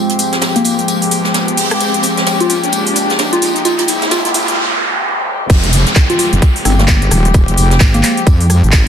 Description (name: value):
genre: bass house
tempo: 130 BPM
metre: 4/4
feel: swing 60% on 16ths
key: F minor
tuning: A4 = 439 Hz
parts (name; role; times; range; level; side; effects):
- dark chamber string section; sustained chords; 0.0-8.9 s; F3 to G4; -18 LUFS; left 3 dB; sidechain pumping, low-pass filter
- riser, noise sweep and downlifter; sound effects; 0.2-8.9 s; none; -19 LUFS; right 2 dB; none
- deep dark ambient pad; texture; 0.0-4.6 s; Ab3 to G5; -25 LUFS; right 2 dB; chorus, built-in reverb, sidechain pumping
- house drum kit; drums; 0.1-8.8 s; crash cymbal, handclaps, hi-hat, rim click, shaker; -18 LUFS; equal; high-pass filter on hats, high-pass filter on perc, high-pass filter on snare, high-pass filter on cymbals
- jazz brush drum kit; drums; 0.1-8.9 s; hi-hat, snare drum, tambourine; -21 LUFS; right 1 dB; high-pass filter on hats, soft clipping on snare, high-pass filter on snare, high-pass filter on perc, high-pass filter on room
- soft struck synth lead; melody; 0.6-8.1 s; Bb3 to F4; -18 LUFS; left 1 dB; chorus, digital delay
- wobble bass; bass; 5.5-8.9 s; Eb1 to F2; -11 LUFS; equal; chorus, tube saturation, sidechain pumping
- electronic kick drum; drums; 5.5-8.8 s; none; -9 LUFS; equal; none
room: light reverb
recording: dense, heavily limited modern master, high-pass filter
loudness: -10 LUFS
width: side -8 dB against mid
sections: 0.0-5.5 A section; 5.5-8.9 B section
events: build-up 0.0-5.5; filter sweep on string section 0.0-5.5; riser 0.2-4.6; noise sweep 3.7-5.5; break 4.6-5.5; drop 5.5-8.9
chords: 0.0 Fmadd9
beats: 0.42 0.88 1.34 | 1.81 2.27 2.73 3.19 | 3.65 4.11 4.58 5.04 | 5.50 5.96 6.42 6.88 | 7.34 7.81 8.27 8.73